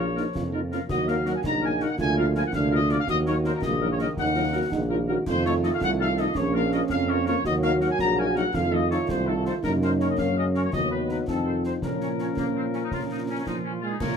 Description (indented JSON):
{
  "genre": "military-style march for wind band",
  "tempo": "110 BPM (dotted quarters)",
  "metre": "6/8",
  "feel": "straight",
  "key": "Bb minor",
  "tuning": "A4 = 439 Hz",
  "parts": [
    { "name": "dark trumpet section", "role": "melody", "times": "0.0-14.2 s", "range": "F4 to Bb5", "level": "-29 LUFS", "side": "left 3 dB", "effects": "none" },
    { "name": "mellow euphonium", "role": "second line", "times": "0.0-14.2 s", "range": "F3 to Gb4", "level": "-29 LUFS", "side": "right 4 dB", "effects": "none" },
    { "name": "warm woodwind section", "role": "second line", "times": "0.0-14.2 s", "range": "Bb3 to Db5", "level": "-36 LUFS", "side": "left 4 dB", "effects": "none" },
    { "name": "dark French horn section", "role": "accompaniment", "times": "0.0-13.8 s", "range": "F3 to F4", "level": "-30 LUFS", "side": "left 5 dB", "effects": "none" },
    { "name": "dark trombone section", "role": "sustained chords", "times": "0.0-14.2 s", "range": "Db3 to Db4", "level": "-34 LUFS", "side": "left 1 dB", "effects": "none" },
    { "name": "warm tuba", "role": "bass", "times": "0.0-14.2 s", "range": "Bb1 to Bb2", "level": "-27 LUFS", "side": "right 2 dB", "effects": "none" },
    { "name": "concert snare drum, concert bass drum and clash cymbals", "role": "drums", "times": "0.2-14.2 s", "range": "none", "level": "-35 LUFS", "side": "left 1 dB", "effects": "none" }
  ],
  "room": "little or no reverb",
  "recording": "dark, warm production",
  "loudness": "-22 LUFS",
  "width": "side -7 dB against mid",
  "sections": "0.0-14.0 A section",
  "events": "none",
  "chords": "0.0 Bbm; 0.9 Ebm; 2.0 Bb/D; 3.1 Ebm; 5.3 F7; 6.4 Bbm; 7.5 Ebm; 8.5 F7; 9.6 Gb; 10.7 B/D#; 11.3 F7; 11.8 Bbm",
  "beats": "0.35 | 0.90 1.44 | 1.99 2.54 | 3.08 3.63 | 4.17 4.72 | 5.27 5.81 | 6.36 6.91 | 7.45 8.00 | 8.54 9.09 | 9.64 10.18 | 10.73 11.28 | 11.82 12.37 | 12.91 13.46 | 14.01"
}